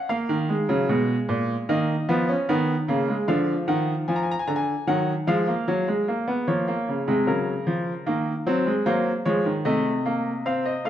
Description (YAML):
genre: classical, baroque-style 3-part fugue for grand piano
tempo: 75 BPM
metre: 4/4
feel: straight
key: Eb minor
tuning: A4 = 438 Hz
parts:
  - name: bright baby grand piano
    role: solo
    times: 0.0-10.9 s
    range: Bb2 to Bb5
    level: -21 LUFS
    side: equal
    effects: none
room: wet recital hall reverb, RT60 1.6 s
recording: dark, warm production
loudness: -21 LUFS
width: side -10 dB against mid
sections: 0.0-10.9 A section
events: none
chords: 0.1 Ebm; 1.7 Fm7b5/Eb; 3.3 Bb7/D; 4.9 Ebm; 6.5 Bbm; 8.1 Cm7b5/Eb; 9.7 F7/C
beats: | 0.10 0.89 1.69 2.49 | 3.29 4.08 4.87 5.67 | 6.47 7.27 8.07 8.86 | 9.66 10.46